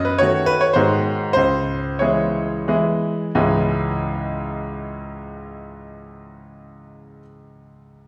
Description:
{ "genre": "classical, romantic triple-time dance for piano with dotted rhythms", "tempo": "86-115 BPM", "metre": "3/4", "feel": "rubato", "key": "C# minor", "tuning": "A4 = 440 Hz", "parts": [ { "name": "clear baby grand piano", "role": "solo", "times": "0.0-8.1 s", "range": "C#2 to D#5", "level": "-21 LUFS", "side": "equal", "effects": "none" } ], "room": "wet recital hall reverb, RT60 1.4 s", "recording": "recorded in a church or concert hall", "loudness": "-20 LUFS", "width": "mono", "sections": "0.0-3.3 A section; 3.3-7.2 B section", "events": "slowing down 0.0-3.3", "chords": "0.0 D#dim/F#; 0.8 G#7; 1.4 C#m" }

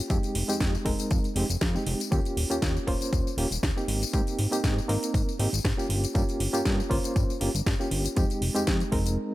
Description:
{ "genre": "nu-disco, nu disco", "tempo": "119 BPM", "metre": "4/4", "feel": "swing 53% on 16ths", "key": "F minor", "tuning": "A4 = 439 Hz", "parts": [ { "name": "reed electric piano", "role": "accompaniment", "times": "0.0-9.3 s", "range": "Ab3 to C5", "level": "-30 LUFS", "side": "right 1 dB", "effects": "fast tremolo, tape echo" }, { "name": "fat analog bass", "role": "bass", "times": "0.1-9.2 s", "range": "Eb1 to Ab2", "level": "-29 LUFS", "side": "equal", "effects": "tube saturation" }, { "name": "electronic kick drum", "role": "drums", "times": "0.1-9.0 s", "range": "none", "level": "-27 LUFS", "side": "equal", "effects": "none" }, { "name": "house drum kit", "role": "drums", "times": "0.1-9.2 s", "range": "hi-hat, snare drum, tambourine", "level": "-32 LUFS", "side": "left 1 dB", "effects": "none" } ], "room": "little or no reverb", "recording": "none", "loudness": "-24 LUFS", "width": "side -16 dB against mid", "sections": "0.0-9.3 A section", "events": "break 9.2", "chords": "0.1 Fm7; 2.1 Eb9; 3.9 Abmaj9; 5.9 Gm7b5; 8.2 Fm7" }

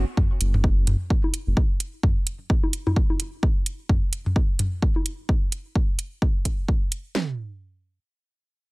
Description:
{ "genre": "minimal techno", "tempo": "129 BPM", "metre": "4/4", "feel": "swing 58% on 16ths", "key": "unclear", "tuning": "A4 = 439 Hz", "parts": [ { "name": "saturated sub bass", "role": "bass", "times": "0.0-1.5 s", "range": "F#1", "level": "-22 LUFS", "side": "equal", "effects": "sidechain pumping" }, { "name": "house drum kit", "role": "drums", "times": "0.2-7.3 s", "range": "kick drum, snare drum, toms", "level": "-22 LUFS", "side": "equal", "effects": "none" }, { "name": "electronic toms and congas", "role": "percussion", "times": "0.2-5.0 s", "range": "none", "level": "-27 LUFS", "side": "left 1 dB", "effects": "none" }, { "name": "electronic hi-hat", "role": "drums", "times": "0.4-7.0 s", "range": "none", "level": "-27 LUFS", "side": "right 3 dB", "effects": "none" } ], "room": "little or no reverb", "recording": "none", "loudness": "-21 LUFS", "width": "side -25 dB against mid", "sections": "0.0-7.2 A section; 7.2-8.7 B section", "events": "none", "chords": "none" }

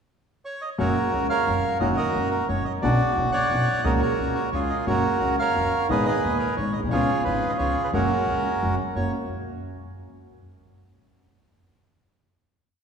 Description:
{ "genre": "tango", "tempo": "176 BPM", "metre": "3/4", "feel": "rubato", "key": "F# major", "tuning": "A4 = 440 Hz", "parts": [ { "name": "bandoneon", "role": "melody", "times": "0.5-9.1 s", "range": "C#4 to F#5", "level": "-24 LUFS", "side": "right 2 dB", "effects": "none" }, { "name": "warm concert grand piano", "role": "accompaniment", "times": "0.8-9.1 s", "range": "D#1 to G#4", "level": "-26 LUFS", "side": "left 1 dB", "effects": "none" }, { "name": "upright bass", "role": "bass", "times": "0.8-9.1 s", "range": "F#1 to D#2", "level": "-30 LUFS", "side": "right 2 dB", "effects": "none" } ], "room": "wet church reverb, RT60 2.9 s", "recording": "recorded in a church or concert hall", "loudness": "-21 LUFS", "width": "side -6 dB against mid", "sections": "0.0-0.8 pickup bar; 0.8-9.0 A section; 9.0-10.0 final chord", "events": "none", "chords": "0.0 N.C.; 0.8 F#; 1.8 D#m/F#; 2.8 Bmadd9; 3.8 F#/C#; 4.5 C#; 4.9 F#; 5.9 G#m; 6.9 C#7; 7.9 F#" }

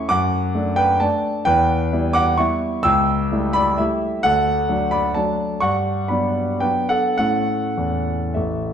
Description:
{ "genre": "classical, piano waltz", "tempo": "100-139 BPM", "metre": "3/4", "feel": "rubato", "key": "D major", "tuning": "A4 = 439 Hz", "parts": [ { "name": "warm grand piano", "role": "solo", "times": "0.0-8.7 s", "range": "A1 to E6", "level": "-17 LUFS", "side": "equal", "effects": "none" } ], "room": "wet recital hall reverb, RT60 1.3 s", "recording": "dark, warm production", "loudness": "-17 LUFS", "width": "side -8 dB against mid", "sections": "0.0-8.7 A section", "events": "none", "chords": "0.1 D/F#; 1.5 Em; 2.8 A7/C#; 4.2 D; 5.6 Gmaj7; 7.2 A" }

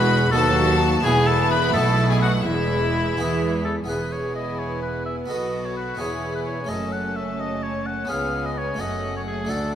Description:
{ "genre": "classical, baroque-style concerto movement with solo episodes", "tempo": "85 BPM (dotted quarters)", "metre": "6/8", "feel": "straight", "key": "E major", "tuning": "A4 = 440 Hz", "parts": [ { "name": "clear chamber violin section", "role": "melody", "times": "0.0-9.8 s", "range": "E5 to B5", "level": "-30 LUFS", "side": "left 3 dB", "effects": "none" }, { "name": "warm oboe", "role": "melody", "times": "0.0-9.7 s", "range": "E4 to F#5", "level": "-26 LUFS", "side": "left 2 dB", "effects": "none" }, { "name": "rich chamber violin section", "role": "second line", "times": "0.0-9.8 s", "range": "C#4 to F#4", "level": "-30 LUFS", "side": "left 3 dB", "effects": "none" }, { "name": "harpsichord", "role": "accompaniment", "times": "0.0-9.8 s", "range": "C#2 to B4", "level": "-30 LUFS", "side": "right 1 dB", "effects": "none" }, { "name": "rich symphonic viola section", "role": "accompaniment", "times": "0.0-9.8 s", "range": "F#3 to B3", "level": "-28 LUFS", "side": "equal", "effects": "none" }, { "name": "clear studio cello section", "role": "bass", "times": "0.0-9.8 s", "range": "C#2 to E3", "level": "-28 LUFS", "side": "right 3 dB", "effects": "none" }, { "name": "rich studio double bass section", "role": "bass", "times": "0.0-9.8 s", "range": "E1 to E2", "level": "-27 LUFS", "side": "right 2 dB", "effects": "none" } ], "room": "wet recital hall reverb, RT60 1.8 s", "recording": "none", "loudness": "-20 LUFS", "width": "side -10 dB against mid", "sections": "0.0-3.9 A section; 3.9-9.8 B section", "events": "none", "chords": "0.3 B7/D#; 1.0 E; 1.7 B7; 2.5 E; 5.3 B7; 6.0 E; 6.7 F#m; 8.1 C#7; 8.8 F#m" }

